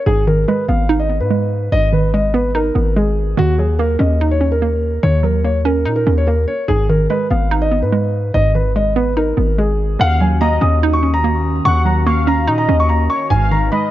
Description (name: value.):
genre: hip hop.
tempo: 145 BPM.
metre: 4/4.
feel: half-time.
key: Eb minor.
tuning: A4 = 440 Hz.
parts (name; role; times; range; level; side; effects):
hollow square pluck; accompaniment; 0.0-13.9 s; Ab2 to Eb4; -19 LUFS; right 3 dB; chorus.
dark concert grand piano; melody; 0.1-13.9 s; Gb4 to Eb6; -19 LUFS; equal; ping-pong delay.
hard-hitting 808-style bass; bass; 0.1-13.7 s; Ab1 to Bb2; -17 LUFS; left 1 dB; none.
warm velvety synth lead; second line; 10.0-13.9 s; Db5 to Gb5; -23 LUFS; left 3 dB; chorus, ping-pong delay.
hollow soft pad; sustained chords; 10.0-13.9 s; Eb3 to Cb5; -24 LUFS; left 1 dB; chorus.
room: digital ambience.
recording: nothing above 7.6 kHz.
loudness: -13 LUFS.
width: side -14 dB against mid.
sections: 0.0-10.0 A section; 10.0-13.9 B section.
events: none.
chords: 0.1 Abm; 3.4 Ebm7; 6.7 Abm; 10.0 Ebm7; 13.3 Abm.